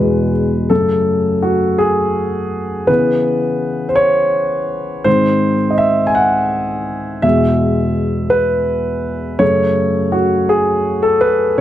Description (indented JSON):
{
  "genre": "pop",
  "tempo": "55 BPM (dotted quarters)",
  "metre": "6/8",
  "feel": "straight",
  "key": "unclear",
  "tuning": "A4 = 440 Hz",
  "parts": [
    { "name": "warm concert grand piano", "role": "solo", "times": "0.0-11.6 s", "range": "E2 to G#5", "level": "-13 LUFS", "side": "equal", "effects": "none" }
  ],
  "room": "light reverb, small room ambience",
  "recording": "dry, close 1970s-style studio recording",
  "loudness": "-13 LUFS",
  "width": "side -12 dB against mid",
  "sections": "0.0-11.6 A section",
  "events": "grand piano solo 0.0-11.6",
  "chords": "0.0 E; 0.7 F#m; 2.9 C#m7; 5.1 G#; 7.2 E; 9.4 F#m"
}